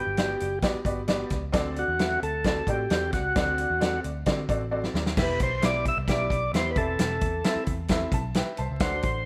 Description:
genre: uptempo 1960s-style soul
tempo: 132 BPM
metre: 4/4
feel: straight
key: unclear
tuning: A4 = 440 Hz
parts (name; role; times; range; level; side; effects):
- tonewheel organ; melody; 0.0-9.3 s; F#4 to E5; -30 LUFS; equal; slow rotary speaker
- clear upright piano; accompaniment; 0.0-9.3 s; G2 to A5; -34 LUFS; equal; none
- vintage muted picked electric bass; bass; 0.1-9.2 s; E1 to D3; -35 LUFS; equal; none
- natural country drum kit; drums; 0.2-9.1 s; crash cymbal, hi-hat, kick drum, snare drum; -30 LUFS; equal; none
room: light reverb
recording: vinyl crackle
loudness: -26 LUFS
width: mono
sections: 0.0-5.2 A section; 5.2-9.3 B section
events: drum fill 4.7-5.2; upright piano fill 7.9-8.8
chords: 0.0 Gmaj7; 1.5 D7; 5.2 Em; 6.8 Am/E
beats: 0.17 0.63 1.08 | 1.54 1.99 2.45 2.90 | 3.36 3.81 4.27 4.72 | 5.17 5.63 6.08 6.54 | 6.99 7.45 7.90 8.36 | 8.81

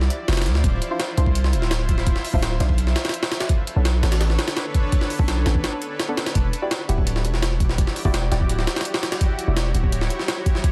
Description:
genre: drum and bass, jungle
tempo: 168 BPM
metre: 4/4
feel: straight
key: E dorian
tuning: A4 = 440 Hz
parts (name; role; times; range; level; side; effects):
- granular cloud pad; sustained chords; 0.0-10.7 s; D4 to E5; -33 LUFS; equal; built-in reverb
- long sustained 808-style bass; bass; 0.0-10.1 s; D1 to D2; -23 LUFS; equal; none
- jungle sampler-style drum kit; drums; 0.0-10.7 s; hi-hat, kick drum, snare drum; -25 LUFS; equal; overdrive
- deep mellow chord stab; stabs; 0.9-9.6 s; B3 to D5; -34 LUFS; equal; chorus, cassette tape, dub echo
room: little or no reverb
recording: dense, heavily limited modern master, vinyl crackle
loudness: -22 LUFS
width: mono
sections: 0.0-10.7 A section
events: break 5.6-6.4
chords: 0.0 Dm9; 2.8 Bm9; 6.4 Em9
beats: 0.28 | 0.64 1.00 1.35 1.71 | 2.07 2.42 2.78 3.14 | 3.50 3.85 4.21 4.57 | 4.92 5.28 5.64 6.00 | 6.35 6.71 7.07 7.42 | 7.78 8.14 8.50 8.85 | 9.21 9.57 9.92 10.28 | 10.64

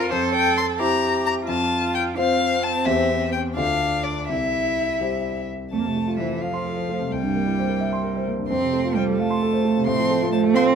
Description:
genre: quick classical-period movement for piano trio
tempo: 87 BPM (dotted quarters)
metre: 6/8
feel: rubato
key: F major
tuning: A4 = 440 Hz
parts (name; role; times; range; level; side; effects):
- warm violin; melody; 0.0-10.6 s; Bb4 to C6; -25 LUFS; left 5 dB; none
- warm cello; second line; 0.0-10.8 s; E3 to A4; -24 LUFS; right 6 dB; none
- warm grand piano; accompaniment; 0.0-10.8 s; C2 to C6; -24 LUFS; left 2 dB; none
room: moderate stone room reverb, RT60 1.4 s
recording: none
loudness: -20 LUFS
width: side -7 dB against mid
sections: 0.0-5.7 A section; 5.7-10.8 B section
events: none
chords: 0.1 C7/F; 1.5 F; 2.9 C/E; 3.6 Dm; 4.3 C; 5.7 F; 7.1 C7; 8.5 F; 9.9 F/A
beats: | 0.11 0.80 | 1.48 2.17 | 2.86 3.56 | 4.28 5.00 | 5.72 6.42 | 7.12 7.81 | 8.50 9.19 | 9.88 10.56

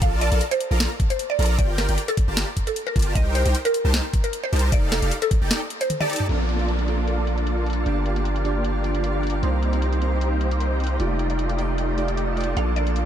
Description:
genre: future bass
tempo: 153 BPM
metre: 4/4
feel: swing 53% on 16ths, half-time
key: unclear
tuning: A4 = 439 Hz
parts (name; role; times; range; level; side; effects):
- mallet-like synth pluck; melody; 0.0-6.3, 12.6-13.0 s; A4 to F5; -27 LUFS; right 1 dB; lush chorus, sidechain pumping, ping-pong delay
- supersaw chords; riff; 0.0-13.1 s; A3 to Bb5; -27 LUFS; equal; ensemble chorus, sidechain pumping, low-pass filter, ping-pong delay
- long sustained 808-style bass; bass; 0.0-13.1 s; F1 to C2; -23 LUFS; equal; sidechain pumping
- electronic kick drum; drums; 0.0-5.4 s; none; -21 LUFS; equal; small room ambience
- trap drum kit; drums; 0.0-13.0 s; crash cymbal, hi-hat, snare drum, toms; -29 LUFS; left 1 dB; low-pass filter on snare, small room ambience, low-pass filter on hats, low-pass filter on toms, low-pass filter on cymbals
- glassy digital keys; accompaniment; 6.3-13.1 s; A3 to D5; -30 LUFS; right 4 dB; chorus, sidechain pumping, ping-pong delay
- shimmering ambient pad; sustained chords; 7.3-13.1 s; C3 to A4; -35 LUFS; equal; chorus, built-in reverb, sidechain pumping
- downlifter; sound effects; 6.3-9.4 s; none; -37 LUFS; left 1 dB; none
room: little or no reverb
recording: none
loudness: -20 LUFS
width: side -10 dB against mid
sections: 0.0-6.3 A section; 6.3-13.1 B section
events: drop 0.0-6.3; break 5.5-6.3; drum fill 5.9-6.3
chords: 0.0 Bbmaj7; 1.6 Gm7; 3.2 Cm7; 4.7 F13; 6.3 Bbmaj7; 7.9 Gm7; 9.4 Cm7; 11.0 F13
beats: | 0.02 0.41 0.80 1.19 | 1.59 1.98 2.37 2.76 | 3.15 3.55 3.94 4.33 | 4.72 5.12 5.51 5.90 | 6.29 6.68 7.08 7.47 | 7.86 8.25 8.64 9.04 | 9.43 9.82 10.21 10.61 | 11.00 11.39 11.78 12.17 | 12.57 12.96

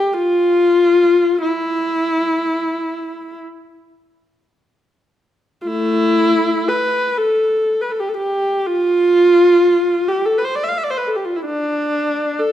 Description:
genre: classical, free, expressive piece for unaccompanied viola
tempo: 21-44 BPM (dotted quarters)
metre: 6/8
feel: rubato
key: unclear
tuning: A4 = 440 Hz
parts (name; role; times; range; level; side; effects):
- dark viola; solo; 0.0-12.5 s; A3 to F5; -14 LUFS; equal; none
room: moderate recital hall reverb, RT60 1.4 s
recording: none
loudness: -14 LUFS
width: side -11 dB against mid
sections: 0.0-5.7 A section; 5.7-12.5 B section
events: none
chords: none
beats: | 1.43 3.41 | 5.66 7.16 | 8.63 10.06 | 11.46

